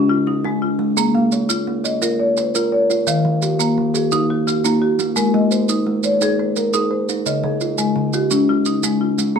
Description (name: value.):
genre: southern african traditional, mbira-style interlocking cycle.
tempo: 114 BPM (dotted quarters).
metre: 12/8.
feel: straight.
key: unclear.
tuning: A4 = 440 Hz.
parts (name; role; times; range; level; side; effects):
kalimba; arpeggios; 0.0-9.4 s; Db3+43c to F5; -20 LUFS; right 4 dB; none.
marimba with medium mallets; arpeggios; 0.0-9.4 s; Db3+43c to F5; -18 LUFS; left 3 dB; none.
maracas; percussion; 1.0-9.3 s; none; -25 LUFS; right 8 dB; none.
room: moderate studio reverb, RT60 0.6 s.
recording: dark, warm production.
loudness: -16 LUFS.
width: side -6 dB against mid.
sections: 0.0-9.4 A section.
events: none.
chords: 0.0 Db; 1.0 Bbm; 3.1 Eb; 5.2 Ab; 7.3 Db.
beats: 0.44 | 0.97 1.50 2.02 2.54 | 3.07 3.59 4.12 4.64 | 5.16 5.69 6.21 6.73 | 7.26 7.78 8.31 8.83 | 9.35.